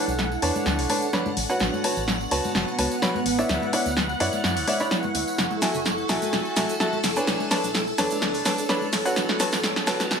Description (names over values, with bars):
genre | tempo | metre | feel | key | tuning
piano house | 127 BPM | 4/4 | swing 54% on 16ths | unclear | A4 = 436 Hz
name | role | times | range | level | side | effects
string machine, violins | sustained chords | 0.0-10.2 s | A4 to F#5 | -31 LUFS | equal | ensemble chorus
clear grand piano | riff | 0.0-10.2 s | D4 to B5 | -26 LUFS | equal | low-pass filter, ping-pong delay
granular cloud pad | texture | 0.0-10.2 s | B3 to C#6 | -30 LUFS | right 2 dB | built-in reverb
organ-like FM bass | bass | 0.1-10.2 s | E1 to F#2 | -33 LUFS | equal | none
tambourine and congas | percussion | 0.1-10.2 s | none | -35 LUFS | left 5 dB | none
punchy analog drum machine | drums | 0.2-10.2 s | cabasa, hi-hat, snare drum | -26 LUFS | equal | none
room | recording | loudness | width
light reverb | high-pass filter | -21 LUFS | side -6 dB against mid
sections
0.0-10.2 A section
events
build-up 0.0-10.2; drum fill 0.0-10.2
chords
0.0 Bm9; 1.4 A69; 3.5 Dmaj9; 5.4 F#m9; 7.3 Bm9; 8.9 A69